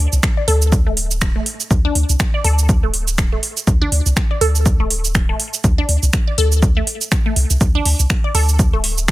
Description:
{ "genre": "minimal techno", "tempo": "122 BPM", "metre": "4/4", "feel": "swing 57% on 16ths", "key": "unclear", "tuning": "A4 = 440 Hz", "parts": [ { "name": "punchy sub bass", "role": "bass", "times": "0.0-9.1 s", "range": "D1 to D2", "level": "-17 LUFS", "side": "equal", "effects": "sidechain pumping" }, { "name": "garage drum kit", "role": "drums", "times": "0.1-9.1 s", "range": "finger snaps, hi-hat, shaker", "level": "-20 LUFS", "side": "right 2 dB", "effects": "soft clipping on snare" }, { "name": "electronic kick drum", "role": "drums", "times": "0.2-9.1 s", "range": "none", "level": "-16 LUFS", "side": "equal", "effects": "overdrive" }, { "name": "resonant blip pluck", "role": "riff", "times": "0.4-8.8 s", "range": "A3 to D5", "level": "-23 LUFS", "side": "equal", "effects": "phaser, sidechain pumping, digital delay" } ], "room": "little or no reverb", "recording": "dense, heavily limited modern master", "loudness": "-14 LUFS", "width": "side -17 dB against mid", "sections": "0.0-9.1 A section", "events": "none", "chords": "0.0 D5" }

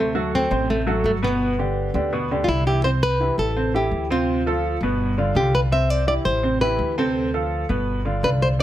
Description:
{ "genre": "latin, salsa", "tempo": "167 BPM", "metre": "4/4", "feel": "straight", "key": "unclear", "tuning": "A4 = 440 Hz", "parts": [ { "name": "flamenco guitar", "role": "melody", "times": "0.0-8.6 s", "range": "A3 to E5", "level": "-23 LUFS", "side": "left 1 dB", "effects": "none" }, { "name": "warm upright piano", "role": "accompaniment", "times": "0.0-8.6 s", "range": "B2 to C5", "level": "-24 LUFS", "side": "right 2 dB", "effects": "none" }, { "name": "upright bass", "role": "bass", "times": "0.0-8.6 s", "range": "G1 to D2", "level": "-24 LUFS", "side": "equal", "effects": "none" } ], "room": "light reverb", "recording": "none", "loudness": "-19 LUFS", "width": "side -12 dB against mid", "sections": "0.0-2.8 A section; 2.8-8.6 B section", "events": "none", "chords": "0.0 D7; 1.4 G; 2.8 C; 3.6 Am7; 4.3 Dm7; 5.0 G7; 5.7 C; 6.4 Am7; 7.2 Dm7; 7.9 G7" }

